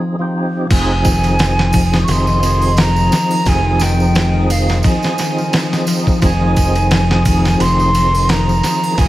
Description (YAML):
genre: trip hop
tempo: 87 BPM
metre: 4/4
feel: swing 55% on 16ths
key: F minor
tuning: A4 = 439 Hz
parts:
  - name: percussive tonewheel organ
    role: accompaniment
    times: 0.0-9.1 s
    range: F3 to Ab4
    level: -20 LUFS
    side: right 1 dB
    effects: overdrive, chorus vibrato, slow rotary speaker, tremolo, vintage 12-bit sampler grit, tape echo
  - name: concert harp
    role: arpeggios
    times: 0.0-9.1 s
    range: Eb3 to C4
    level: -19 LUFS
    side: left 2 dB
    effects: none
  - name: mellow hollow silver concert flute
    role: melody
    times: 0.7-9.1 s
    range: F5 to Db6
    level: -19 LUFS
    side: right 2 dB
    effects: tape echo
  - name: modern bright fingered electric bass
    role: bass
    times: 0.7-9.1 s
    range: F1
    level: -16 LUFS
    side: equal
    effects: none
  - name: dusty soul sampler-style drum kit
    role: drums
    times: 0.7-9.1 s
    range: crash cymbal, kick drum, ride cymbal, snare drum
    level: -18 LUFS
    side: equal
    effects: vintage 12-bit sampler grit
  - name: tambourine and triangle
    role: percussion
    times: 0.7-9.1 s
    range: none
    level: -28 LUFS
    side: right 3 dB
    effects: none
  - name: backwards swelling texture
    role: texture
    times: 2.2-9.1 s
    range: Eb4 to Eb5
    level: -28 LUFS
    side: right 1 dB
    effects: built-in reverb
room: studio reverb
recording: vinyl crackle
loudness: -12 LUFS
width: side -15 dB against mid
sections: 0.7-9.1 A section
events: break 0.0-0.7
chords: 0.0 Fm7